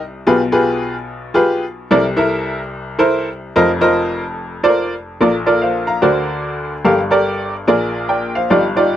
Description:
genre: gospel.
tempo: 146 BPM.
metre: 4/4.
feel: swing 63% on 8ths.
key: Bb major.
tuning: A4 = 440 Hz.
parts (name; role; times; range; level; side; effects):
bright upright piano; solo; 0.0-9.0 s; F1 to Bb5; -14 LUFS; equal; none.
room: little or no reverb.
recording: dry, close 1970s-style studio recording.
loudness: -14 LUFS.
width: side -11 dB against mid.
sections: 0.0-5.2 A section; 5.2-9.0 B section.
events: none.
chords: 0.3 G7b9/B; 1.9 C13; 3.6 F7sus4; 5.2 Bbmaj7; 6.0 Daug7; 6.9 Gm9; 7.7 Bb7.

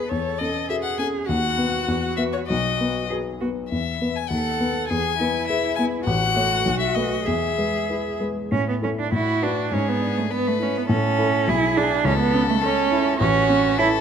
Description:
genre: quick classical-period movement for piano trio.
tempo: 94-105 BPM.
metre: 2/4.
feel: rubato.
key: E major, A major from 8.5 s.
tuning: A4 = 440 Hz.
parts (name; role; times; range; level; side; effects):
rich violin; melody; 0.0-14.0 s; F#4 to G#5; -25 LUFS; left 8 dB; none.
rich cello; second line; 0.0-13.9 s; A3 to A4; -24 LUFS; right 6 dB; none.
warm grand piano; accompaniment; 0.0-14.0 s; A1 to C#5; -24 LUFS; left 2 dB; none.
room: moderate scoring stage reverb, RT60 1.7 s.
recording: close, detailed microphones.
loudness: -20 LUFS.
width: side -8 dB against mid.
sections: 0.0-8.5 A section; 8.5-14.0 B section.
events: none.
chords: 0.1 F#m7/E; 1.3 B/D#; 1.9 E5; 2.5 B; 3.7 E5; 4.3 B7/D#; 4.9 E; 6.1 F#m/A; 6.6 B7; 7.3 E; 8.5 A5; 9.1 Bm7/A; 9.7 E7/G#; 10.9 A; 11.5 E7/B; 12.1 A/C#; 13.2 F#m/A.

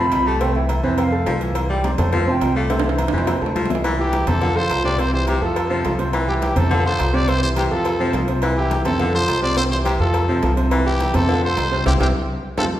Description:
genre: latin, salsa.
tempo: 210 BPM.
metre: 4/4.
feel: straight.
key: C major.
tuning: A4 = 439 Hz.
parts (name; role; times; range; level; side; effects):
bright reedy bansuri; melody; 0.0-3.7 s; C5 to B5; -25 LUFS; equal; none.
clear baritone saxophone; second line; 0.0-12.6 s; C3 to A3; -26 LUFS; left 2 dB; none.
warm baby grand piano; accompaniment; 0.0-12.7 s; C3 to C6; -22 LUFS; right 2 dB; none.
upright bass; bass; 0.0-12.7 s; C2 to F2; -22 LUFS; equal; none.
congas; percussion; 0.1-12.6 s; none; -31 LUFS; left 1 dB; none.
cowbell and bongos; percussion; 0.1-12.6 s; none; -30 LUFS; left 2 dB; none.
timbales and agogo bells; percussion; 0.1-12.6 s; none; -29 LUFS; right 3 dB; none.
growling trumpet; melody; 4.0-12.6 s; G4 to D5; -24 LUFS; equal; none.
room: wet recital hall reverb, RT60 1.7 s.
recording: recorded in a church or concert hall.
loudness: -17 LUFS.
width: side -12 dB against mid.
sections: 0.0-3.8 A section; 3.8-12.8 B section.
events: drum fill 2.7-3.8, 12.1-12.8; band accent 11.9-12.8.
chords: 0.4 F; 1.6 C; 2.1 F; 2.7 C; 3.3 F; 3.8 C; 4.4 F; 5.0 C; 5.6 F; 6.1 C; 6.7 F; 7.3 C; 7.9 F; 8.4 C; 9.0 F; 9.6 C; 10.1 F; 10.7 C; 11.3 F; 11.9 C.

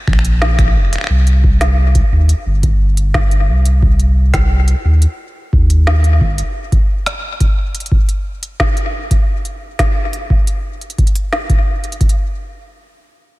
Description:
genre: IDM.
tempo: 88 BPM.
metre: 4/4.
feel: straight.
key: C minor.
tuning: A4 = 438 Hz.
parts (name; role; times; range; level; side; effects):
warm sub bass; bass; 0.1-6.4 s; F1 to Eb2; -11 LUFS; equal; none.
electronic kick drum; drums; 0.1-12.1 s; none; -15 LUFS; equal; overdrive.
organic electronic drum kit; drums; 0.1-12.2 s; finger snaps, hi-hat, snare drum; -21 LUFS; equal; ping-pong delay.
room: little or no reverb.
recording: none.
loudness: -12 LUFS.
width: side -19 dB against mid.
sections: 0.0-12.0 A section; 12.0-13.4 B section.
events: none.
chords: none.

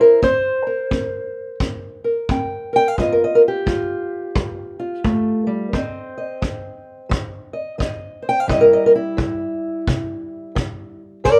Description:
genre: acoustic country blues, solo or duo.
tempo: 87 BPM.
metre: 4/4.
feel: swing 62% on 8ths.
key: C mixolydian.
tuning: A4 = 440 Hz.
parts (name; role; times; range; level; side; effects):
fingerpicked old ladder-braced acoustic guitar; melody; 0.0-11.4 s; C3 to G5; -19 LUFS; equal; none.
kick drum; drums; 0.2-11.4 s; none; -26 LUFS; equal; none.
room: light reverb.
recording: none.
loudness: -20 LUFS.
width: mono.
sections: 0.0-11.4 A section.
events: none.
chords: 0.0 C7(no3); 3.0 G7; 5.7 F5; 8.5 C.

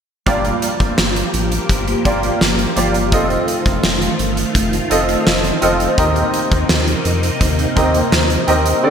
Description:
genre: 1980s-style pop.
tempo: 84 BPM.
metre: 4/4.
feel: straight.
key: G minor.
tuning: A4 = 438 Hz.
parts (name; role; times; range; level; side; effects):
clear concert grand piano; accompaniment; 0.3-8.9 s; G2 to Eb5; -18 LUFS; right 1 dB; ensemble chorus.
phased string machine; sustained chords; 0.6-8.9 s; C3 to G4; -21 LUFS; equal; ensemble chorus, phaser.
round analog bass; bass; 0.3-8.7 s; F1 to F2; -21 LUFS; equal; none.
huge arena drum kit; drums; 0.3-8.8 s; hi-hat, kick drum, snare drum; -18 LUFS; equal; gated reverb.
room: wet lush hall reverb, RT60 2.8 s.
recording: bright 1980s-style digital production.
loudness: -14 LUFS.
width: side -7 dB against mid.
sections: 0.3-8.9 A section.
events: none.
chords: 0.3 Gm7; 3.1 F7; 6.0 Cm7/Eb.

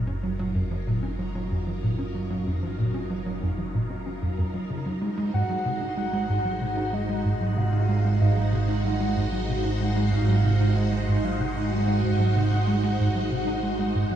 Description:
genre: ambient, sequencer-driven space music.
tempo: 94 BPM.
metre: 4/4.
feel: straight.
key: unclear.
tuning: A4 = 441 Hz.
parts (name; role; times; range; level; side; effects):
phased string machine; sustained chords; 0.0-14.2 s; Gb3 to C5; -31 LUFS; equal; ensemble chorus, phaser, shimmer reverb.
tight sequencer bass; riff; 0.0-14.2 s; Gb2 to Eb4; -27 LUFS; right 1 dB; analog chorus, shimmer reverb, tape echo.
fat analog bass; bass; 0.0-14.2 s; Gb1 to Ab1; -26 LUFS; right 1 dB; tube saturation.
wind-like tuned noise texture; texture; 0.0-14.2 s; Eb4 to Eb5; -39 LUFS; right 3 dB; built-in reverb, analog chorus, shimmer reverb.
soft octave-layered synth lead; melody; 5.3-14.2 s; Eb5 to Gb5; -31 LUFS; equal; chorus, shimmer reverb, tape echo.
room: moderate huge ambient reverb, RT60 8.9 s.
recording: dreamy mix soaked in reverb, studio reverb.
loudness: -23 LUFS.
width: side -10 dB against mid.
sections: 0.0-14.2 A section.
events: fade-in on string machine 0.0-14.2; fade-in on synth texture 0.0-14.2.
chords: 0.0 Gbmaj7; 5.0 Ab7.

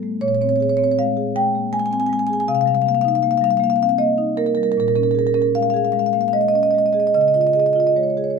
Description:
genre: classical, contemporary piece for solo marimba.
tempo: 73-82 BPM.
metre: 3/4.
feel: rubato.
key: unclear.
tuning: A4 = 440 Hz.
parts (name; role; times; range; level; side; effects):
marimba with soft mallets; solo; 0.0-8.4 s; A2 to Ab5; -16 LUFS; equal; none.
room: light reverb.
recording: close, detailed microphones.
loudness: -16 LUFS.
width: side -5 dB against mid.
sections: 0.0-8.4 A section.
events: none.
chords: 0.2 Bbm9; 2.5 Cm7; 4.8 Bbm7; 7.2 Db.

